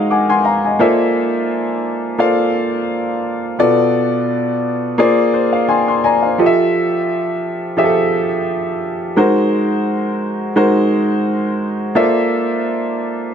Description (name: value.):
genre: soul.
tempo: 86 BPM.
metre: 4/4.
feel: swing 54% on 16ths.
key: F major.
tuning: A4 = 439 Hz.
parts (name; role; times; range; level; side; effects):
warm baby grand piano; solo; 0.0-13.3 s; B2 to D6; -14 LUFS; equal; none.
room: moderate echo chamber reverb, RT60 1.9 s.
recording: none.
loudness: -14 LUFS.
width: side -8 dB against mid.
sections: 0.0-6.4 A section; 6.4-13.3 B section.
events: grand piano fill 0.0-0.8, 5.0-6.4.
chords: 0.0 Ab9; 0.8 Bbmaj9#11; 3.6 Bm7b5; 5.0 Bb9; 6.4 Fmaj9; 9.2 Ab9; 12.0 Bbmaj9#11.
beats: 0.10 | 0.80 1.50 2.20 2.90 | 3.59 4.29 4.99 5.69 | 6.38 7.08 7.78 8.48 | 9.17 9.87 10.57 11.26 | 11.96 12.66.